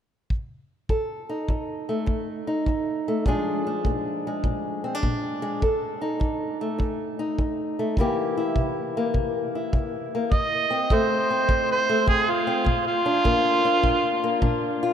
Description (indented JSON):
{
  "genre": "acoustic country blues, solo or duo",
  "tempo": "102 BPM",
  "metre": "4/4",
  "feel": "swing 67% on 8ths",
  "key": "F major from 10.3 s",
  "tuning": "A4 = 439 Hz",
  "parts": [
    { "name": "kick drum", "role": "drums", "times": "0.3-14.6 s", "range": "none", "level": "-25 LUFS", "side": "equal", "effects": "none" },
    { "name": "fingerpicked old ladder-braced acoustic guitar", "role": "accompaniment", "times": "0.9-14.9 s", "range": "F2 to A4", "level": "-25 LUFS", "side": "left 1 dB", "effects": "none" },
    { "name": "overdriven harmonica", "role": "melody", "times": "10.3-14.6 s", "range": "F4 to Eb5", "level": "-21 LUFS", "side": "right 2 dB", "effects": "none" }
  ],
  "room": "wet cathedral reverb, RT60 6.8 s",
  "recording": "in a vast, echoing space",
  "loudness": "-22 LUFS",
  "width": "side -8 dB against mid",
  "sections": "0.9-10.3 A section; 10.3-14.9 B section",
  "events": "none",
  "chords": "0.0 N.C.; 0.9 F7; 3.2 Bb7; 5.6 F7; 8.0 C7; 10.3 F; 12.7 Bb"
}